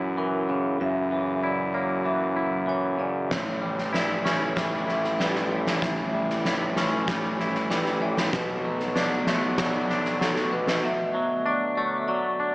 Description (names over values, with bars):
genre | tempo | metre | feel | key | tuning
post-rock | 96 BPM | 4/4 | straight | unclear | A4 = 440 Hz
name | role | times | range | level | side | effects
ethereal airy pad | sustained chords | 0.0-12.5 s | A#2 to A4 | -38 LUFS | equal | none
twangy electric guitar | arpeggios | 0.0-12.5 s | F#2 to E4 | -28 LUFS | left 1 dB | analog chorus, analog delay
vibraphone with medium hard mallets | arpeggios | 0.0-12.5 s | A4 to E5 | -31 LUFS | equal | analog delay
fuzz fingered electric bass | bass | 0.0-10.8 s | A1 to F#2 | -29 LUFS | equal | overdrive
oversized low-tuned drum kit | drums | 3.3-10.8 s | kick drum, snare drum | -27 LUFS | equal | none
room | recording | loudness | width
moderate plate reverb, RT60 2.1 s | small speaker sound | -23 LUFS | side -24 dB against mid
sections
0.0-12.5 A section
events
none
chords
0.0 F#7; 3.3 A7; 8.3 Bm7